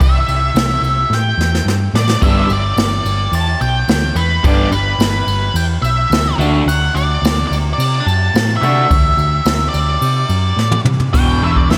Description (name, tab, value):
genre	classic rock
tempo	108 BPM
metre	4/4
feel	straight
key	unclear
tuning	A4 = 441 Hz
part	octave-fuzz lead guitar	melody	0.0-11.8 s	B4 to A5	-20 LUFS	equal	distortion, slapback echo
part	hollow-body short-scale picked electric bass	bass	0.0-11.8 s	E1 to C3	-19 LUFS	equal	none
part	jazz brush drum kit	drums	0.0-11.8 s	crash cymbal, hi-hat, kick drum, ride cymbal, snare drum, toms	-20 LUFS	equal	none
part	crunchy overdriven guitar	riff	2.2-11.8 s	E2 to G4	-22 LUFS	equal	phaser, slapback echo
room	moderate lush hall reverb, RT60 2.5 s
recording	big arena sound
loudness	-15 LUFS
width	mono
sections	0.0-11.1 A section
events	drum fill 1.1-2.2, 10.6-11.1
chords	0.0 C; 2.2 G; 6.4 D; 11.1 E5